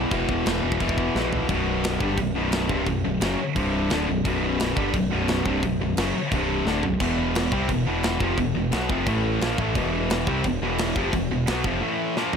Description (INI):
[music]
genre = heavy metal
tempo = 174 BPM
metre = 4/4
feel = straight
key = unclear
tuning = A4 = 441 Hz
[part]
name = heavy high-gain guitar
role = riff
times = 0.0-12.4 s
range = B1 to C4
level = -27 LUFS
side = left 11 dB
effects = distortion
[part]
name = heavy high-gain guitar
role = riff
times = 0.0-12.4 s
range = B1 to C4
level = -28 LUFS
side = right 11 dB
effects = distortion
[part]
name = sludgy distorted guitar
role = riff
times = 0.0-12.4 s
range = B1 to C4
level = -30 LUFS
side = right 1 dB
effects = overdrive
[part]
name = growling picked electric bass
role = bass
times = 0.0-11.8 s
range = B0 to C2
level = -29 LUFS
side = equal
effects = overdrive
[part]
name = tight metal drum kit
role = drums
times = 0.1-12.4 s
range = china cymbal, crash cymbal, kick drum, snare drum, splash cymbal, toms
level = -28 LUFS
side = equal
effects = none
[sound]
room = small room ambience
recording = none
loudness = -21 LUFS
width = side -6 dB against mid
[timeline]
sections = 0.0-1.5 A section; 1.5-12.4 B section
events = drum fill 1.2-1.5, 6.7-7.0, 12.2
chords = 0.0 E5; 1.5 Bm; 3.6 C5; 3.9 Bm; 6.3 C5; 6.7 Bm; 7.0 E5; 9.1 A5; 9.4 E5; 11.8 A5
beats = | 0.12 0.46 0.81 1.15 | 1.50 1.84 2.19 2.53 | 2.88 3.22 3.57 3.91 | 4.26 4.60 4.95 5.29 | 5.63 5.98 6.32 6.67 | 7.01 7.35 7.70 8.04 | 8.38 8.73 9.07 9.42 | 9.76 10.10 10.45 10.79 | 11.13 11.47 11.82 12.16